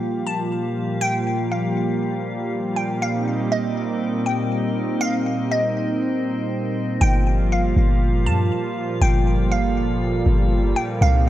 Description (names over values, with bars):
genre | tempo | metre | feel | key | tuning
hip hop | 120 BPM | 4/4 | half-time | unclear | A4 = 440 Hz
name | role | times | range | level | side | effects
glassy wavetable pluck | melody | 0.0-11.3 s | Eb5 to A5 | -26 LUFS | equal | chorus, ping-pong delay
warm analog pad | sustained chords | 0.0-11.3 s | Bb2 to F4 | -22 LUFS | right 1 dB | chorus
drifting glass-harmonics texture | texture | 0.0-11.3 s | Bb3 to D6 | -32 LUFS | left 2 dB | chorus, built-in reverb
warm 808-style bass | bass | 7.0-11.3 s | G1 to G2 | -18 LUFS | equal | none
room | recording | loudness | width
light reverb, digital ambience | worn, warbling old tape, cassette tape, warbly pitch drift | -19 LUFS | side -13 dB against mid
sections
0.0-7.0 A section; 7.0-11.3 B section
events
none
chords
0.0 Gm7; 3.0 Cm9; 7.0 Gm7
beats
0.01 0.51 | 1.01 1.51 2.01 2.51 | 3.01 3.51 4.01 4.51 | 5.01 5.51 6.01 6.51 | 7.01 7.51 8.01 8.51 | 9.01 9.51 10.01 10.51 | 11.01